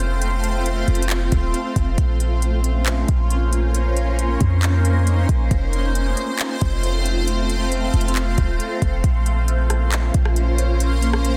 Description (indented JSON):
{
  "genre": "hip hop, atmospheric cloud-rap",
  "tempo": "136 BPM",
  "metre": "4/4",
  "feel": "half-time",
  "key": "Bb harmonic minor",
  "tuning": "A4 = 438 Hz",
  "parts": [
    { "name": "shimmering ambient pad", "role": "sustained chords", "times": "0.0-11.4 s", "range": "A3 to C5", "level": "-26 LUFS", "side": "equal", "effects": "chorus, built-in reverb, phaser, sidechain pumping" },
    { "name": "clean 808-style bass", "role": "bass", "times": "0.0-11.4 s", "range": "Eb1 to F2", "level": "-22 LUFS", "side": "equal", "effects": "none" },
    { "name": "smooth R&B drum kit", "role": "drums", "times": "0.0-11.3 s", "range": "handclaps, hi-hat, kick drum, rim click", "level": "-25 LUFS", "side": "equal", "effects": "none" }
  ],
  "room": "light reverb",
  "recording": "dense, heavily limited modern master",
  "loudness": "-20 LUFS",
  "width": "mono",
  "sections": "0.0-9.0 A section; 9.0-11.4 B section",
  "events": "none",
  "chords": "0.0 F; 2.0 Bbmadd9; 5.5 F; 9.0 Bbmadd9",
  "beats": "| 0.22 0.66 1.10 1.54 | 1.98 2.42 2.86 3.30 | 3.75 4.19 4.63 5.07 | 5.51 5.95 6.39 6.83 | 7.27 7.72 8.16 8.60 | 9.04 9.48 9.92 10.36 | 10.80 11.24"
}